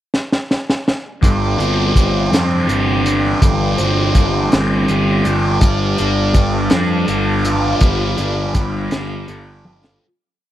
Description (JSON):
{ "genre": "psychedelic rock", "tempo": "54 BPM (dotted quarters)", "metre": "6/8", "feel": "straight", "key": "G mixolydian", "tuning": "A4 = 443 Hz", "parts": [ { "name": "crunchy breakbeat drum kit", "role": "drums", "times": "0.1-10.0 s", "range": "hi-hat, kick drum, snare drum, toms", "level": "-15 LUFS", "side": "equal", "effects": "none" }, { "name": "combo organ", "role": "sustained chords", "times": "1.2-10.0 s", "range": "D5 to D6", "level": "-24 LUFS", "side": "right 5 dB", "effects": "none" }, { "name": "thick fuzz guitar", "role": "riff", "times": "1.2-10.0 s", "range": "G2 to A4", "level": "-18 LUFS", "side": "left 1 dB", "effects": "distortion, phaser" }, { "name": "fuzz picked electric bass", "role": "bass", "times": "1.2-10.0 s", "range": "G1 to F2", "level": "-18 LUFS", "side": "equal", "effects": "overdrive" } ], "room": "studio reverb", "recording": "dry, close 1970s-style studio recording", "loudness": "-14 LUFS", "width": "side -12 dB against mid", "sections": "0.0-1.2 pickup bar; 1.2-10.0 groove", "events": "drum fill 0.1-1.2, 9.7-10.0; fade-out 7.8-10.0", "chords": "0.0 N.C.; 1.2 Gsus4; 5.6 Dm/G" }